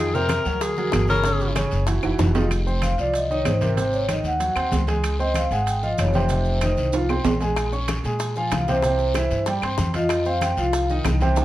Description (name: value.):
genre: Afro-Cuban jazz.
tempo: 190 BPM.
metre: 4/4.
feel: straight.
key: F minor.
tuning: A4 = 441 Hz.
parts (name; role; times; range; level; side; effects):
warm tenor saxophone; second line; 0.0-1.5 s; Ab4 to Bb4; -24 LUFS; left 3 dB; none.
warm concert grand piano; accompaniment; 0.0-11.4 s; C3 to Db6; -25 LUFS; right 2 dB; none.
upright bass; bass; 0.0-11.4 s; F1 to Bb2; -24 LUFS; equal; none.
bongos; percussion; 0.1-2.5, 7.6-11.4 s; none; -32 LUFS; left 8 dB; none.
congas; percussion; 0.1-11.4 s; none; -31 LUFS; left 1 dB; none.
maracas; percussion; 0.1-11.4 s; none; -40 LUFS; right 5 dB; none.
claves; percussion; 0.3-11.2 s; none; -36 LUFS; left 6 dB; none.
guiro; percussion; 0.3-11.4 s; none; -38 LUFS; left 4 dB; none.
timbales; percussion; 0.3-11.4 s; none; -29 LUFS; right 5 dB; none.
vibraphone with soft mallets; melody; 2.8-10.9 s; Bb4 to Ab5; -25 LUFS; equal; none.
room: light reverb.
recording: none.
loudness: -19 LUFS.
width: side -14 dB against mid.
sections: 0.0-2.5 A section; 2.5-11.4 A section.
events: tenor saxophone solo 0.0-2.5; drum fill 2.0-2.5, 6.9-7.6; vibraphone solo 2.5-11.4.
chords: 0.0 F5; 0.6 Daug; 1.2 Gdim; 1.9 Ebmadd9; 2.5 Fm7; 3.8 Ab7; 5.0 Dbmaj7; 6.3 F5; 7.6 Bbm9; 8.8 C; 10.1 Cmadd11.